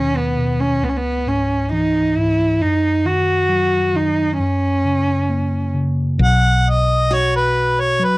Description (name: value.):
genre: folk.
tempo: 67 BPM.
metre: 4/4.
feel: straight.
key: B major.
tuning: A4 = 440 Hz.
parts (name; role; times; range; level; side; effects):
warm cello; second line; 0.0-5.7 s; B3 to F#4; -18 LUFS; right 1 dB; cassette tape.
mellow tine electric piano; accompaniment; 0.0-8.2 s; C#2 to A#3; -20 LUFS; equal; medium stereo tremolo, cassette tape.
clear harmonica; melody; 6.2-8.2 s; B4 to F#5; -16 LUFS; equal; cassette tape.
woody fretless electric bass; bass; 6.2-8.2 s; F#1 to B1; -20 LUFS; equal; none.
picked steel-string acoustic guitar; arpeggios; 7.1-8.2 s; F#4; -24 LUFS; right 1 dB; cassette tape.
room: moderate small room reverb, RT60 0.5 s.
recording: home recording on cassette.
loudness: -15 LUFS.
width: side -20 dB against mid.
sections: 0.0-6.2 A section; 6.2-8.2 B section.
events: cello solo 0.0-6.2.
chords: 0.0 Badd9/D#; 0.8 C#m; 2.6 D#m/F#; 4.4 F#; 6.2 B5.